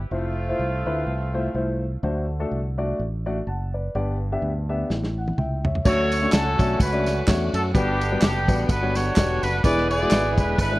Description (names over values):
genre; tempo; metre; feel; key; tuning
uptempo gospel; 126 BPM; 4/4; swing 56% on 8ths; D major from 5.9 s; A4 = 440 Hz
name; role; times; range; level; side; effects
fingered electric bass; bass; 0.0-10.8 s; E1 to F#2; -26 LUFS; equal; none
warm horn section; melody; 0.1-1.8, 5.9-10.8 s; A3 to D5; -25 LUFS; equal; none
warm baby grand piano; accompaniment; 0.1-10.8 s; G2 to A5; -27 LUFS; left 2 dB; none
warm soul drum kit; drums; 4.9-10.7 s; crash cymbal, kick drum, ride cymbal, snare drum, toms; -24 LUFS; equal; none
tonewheel organ; sustained chords; 5.9-10.8 s; D3 to F#5; -30 LUFS; right 1 dB; fast rotary speaker, chorus vibrato
tambourine and handclaps; percussion; 5.9-10.7 s; none; -36 LUFS; right 3 dB; none
room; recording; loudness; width
light reverb, small room reverb; worn, warbling old tape, cassette tape, warbly pitch drift; -20 LUFS; side -18 dB against mid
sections
0.0-5.9 A section; 5.9-10.8 B section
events
drum fill 4.9-5.9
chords
0.1 Fmaj7; 2.0 D7; 3.9 G; 4.9 A; 5.9 Dmaj7; 7.8 Gmaj7; 9.6 E7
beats
| 0.11 0.59 1.07 1.55 | 2.03 2.51 2.99 3.47 | 3.95 4.42 4.90 5.38 | 5.85 6.33 6.80 7.28 | 7.75 8.22 8.70 9.17 | 9.64 10.11 10.58